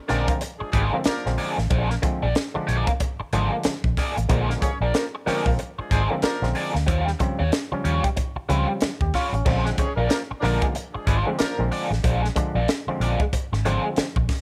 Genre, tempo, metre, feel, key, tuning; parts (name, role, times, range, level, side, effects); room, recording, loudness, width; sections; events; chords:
funk; 93 BPM; 4/4; swing 60% on 16ths; Bb mixolydian; A4 = 444 Hz
warm horn section; second line; 0.1-11.6 s; F3 to Db5; -32 LUFS; equal
crunchy overdriven guitar; accompaniment; 0.1-14.2 s; G3 to D5; -30 LUFS; equal; wah
mellow clav; stabs; 0.1-14.1 s; Db3 to G4; -31 LUFS; equal; auto-wah
vintage muted fingered electric bass; bass; 0.1-14.3 s; Ab1 to Eb2; -26 LUFS; equal
crisp fusion drum kit; drums; 0.1-14.4 s; crash cymbal, hi-hat, kick drum, snare drum; -28 LUFS; equal
small room reverb; -23 LUFS; mono
0.0-9.5 A section; 9.5-14.4 B section
0.0 Bb9; 6.9 Eb13; 9.5 Bb9